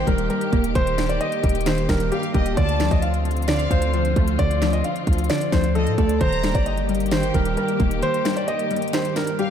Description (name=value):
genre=hip hop, trap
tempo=132 BPM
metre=4/4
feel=half-time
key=unclear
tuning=A4 = 439 Hz
part: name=felt-muted upright piano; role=melody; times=0.0-9.5 s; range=G4 to F5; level=-25 LUFS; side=equal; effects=ping-pong delay
part: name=rich studio violin section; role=second line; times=0.0-9.5 s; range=D5 to Bb5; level=-33 LUFS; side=right 1 dB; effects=ping-pong delay
part: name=glassy wavetable pluck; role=accompaniment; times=0.0-9.5 s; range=D3 to Bb3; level=-25 LUFS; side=left 1 dB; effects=chorus
part: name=dark symphonic string section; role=sustained chords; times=0.0-9.5 s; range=D3 to G4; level=-29 LUFS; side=left 2 dB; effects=none
part: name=warm 808-style bass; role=bass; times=0.0-8.0 s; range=Eb1 to A2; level=-24 LUFS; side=equal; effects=none
part: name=trap drum kit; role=drums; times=0.1-9.5 s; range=finger snaps, hi-hat, kick drum, snare drum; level=-24 LUFS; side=equal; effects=none
room=moderate plate reverb, RT60 2.4 s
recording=dreamy mix soaked in reverb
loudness=-18 LUFS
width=side -8 dB against mid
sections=0.0-9.5 A section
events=kick muted 8.0-9.5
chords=0.0 Eb; 2.6 Dm7; 6.2 Eb